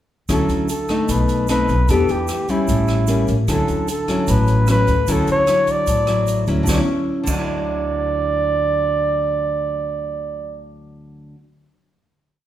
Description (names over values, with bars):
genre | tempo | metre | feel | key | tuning
bossa nova | 150 BPM | 4/4 | straight | D major | A4 = 440 Hz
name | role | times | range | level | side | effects
mellow flugelhorn | melody | 0.3-10.6 s | E4 to D5 | -21 LUFS | right 1 dB | none
nylon-string guitar | accompaniment | 0.3-11.4 s | A2 to G4 | -21 LUFS | left 1 dB | none
upright bass | bass | 0.3-11.3 s | A1 to E2 | -22 LUFS | equal | none
open jazz drum kit | drums | 0.3-7.4 s | crash cymbal, hi-hat, kick drum, rim click, snare drum | -27 LUFS | equal | none
egg shaker | percussion | 0.3-7.4 s | none | -35 LUFS | right 7 dB | none
room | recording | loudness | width
moderate recital hall reverb, RT60 1.4 s | recorded in a church or concert hall | -16 LUFS | side -12 dB against mid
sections
0.3-6.7 A section; 6.7-9.9 final chord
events
none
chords
0.3 Dmaj9; 1.1 B7b9; 1.9 Em7; 2.7 A7b9; 3.5 Dmaj9